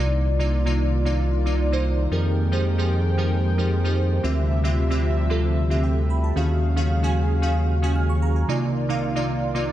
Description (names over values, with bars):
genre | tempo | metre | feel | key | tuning
amapiano | 113 BPM | 4/4 | straight | C minor | A4 = 440 Hz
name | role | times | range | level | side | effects
glassy digital keys | accompaniment | 0.0-9.7 s | C3 to F6 | -24 LUFS | right 1 dB | chorus
warm analog pad | sustained chords | 0.0-9.7 s | C2 to G5 | -30 LUFS | equal | chorus
saturated sub bass | bass | 0.0-8.4 s | C2 to F2 | -21 LUFS | equal | none
room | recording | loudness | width
digital ambience | dark, warm production | -20 LUFS | side -13 dB against mid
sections
0.0-9.7 A section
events
none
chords
0.0 Cm11; 2.1 Fm11; 4.2 Dm11; 6.4 Ebm11; 8.5 Cm11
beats
0.52 1.05 1.58 | 2.11 2.65 3.18 3.71 | 4.24 4.77 5.30 5.83 | 6.36 6.89 7.42 7.96 | 8.49 9.02 9.55